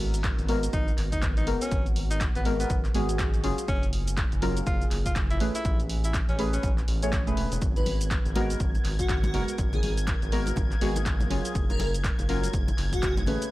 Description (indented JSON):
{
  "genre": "deep house",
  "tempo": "122 BPM",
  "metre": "4/4",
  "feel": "swing 60% on 16ths",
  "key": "G# dorian",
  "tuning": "A4 = 440 Hz",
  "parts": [
    { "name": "deep dark ambient pad", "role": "sustained chords", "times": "0.0-13.5 s", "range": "A#3 to E#5", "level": "-42 LUFS", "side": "equal", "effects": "chorus, built-in reverb, vintage 12-bit sampler grit, sidechain pumping" },
    { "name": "deep mellow chord stab", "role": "stabs", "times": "0.0-13.5 s", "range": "F#3 to C#5", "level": "-31 LUFS", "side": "equal", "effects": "chorus, sidechain pumping, tape echo" },
    { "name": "round analog bass", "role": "bass", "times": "0.0-13.4 s", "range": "E1 to A1", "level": "-29 LUFS", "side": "equal", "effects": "tube saturation, sidechain pumping" },
    { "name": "punchy analog drum machine", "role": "drums", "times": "0.1-13.5 s", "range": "handclaps, hi-hat, shaker", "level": "-36 LUFS", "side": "equal", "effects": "studio reverb" },
    { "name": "electronic kick drum", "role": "drums", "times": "0.2-13.1 s", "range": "none", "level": "-28 LUFS", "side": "equal", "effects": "studio reverb" },
    { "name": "breathy tenor saxophone", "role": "melody", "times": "0.7-6.7 s", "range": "B3 to E#4", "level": "-35 LUFS", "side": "equal", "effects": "tape echo" },
    { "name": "soft string machine", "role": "texture", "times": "7.8-13.5 s", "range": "G#6", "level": "-40 LUFS", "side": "left 1 dB", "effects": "phaser, ensemble chorus, sidechain pumping" },
    { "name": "airy dreamy lead", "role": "melody", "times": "7.8-13.1 s", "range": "F#4 to B4", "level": "-33 LUFS", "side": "left 1 dB", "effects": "chorus, tape echo" },
    { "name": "congas", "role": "percussion", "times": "7.8-13.4 s", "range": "none", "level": "-37 LUFS", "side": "left 2 dB", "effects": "none" }
  ],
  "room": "little or no reverb",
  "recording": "dry, gritty hardware recording",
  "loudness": "-24 LUFS",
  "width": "side -17 dB against mid",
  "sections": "0.0-13.5 A section",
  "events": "none",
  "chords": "0.0 G#m9; 3.7 F#maj7; 5.4 Amaj9; 7.6 G#m9; 11.6 F#maj7"
}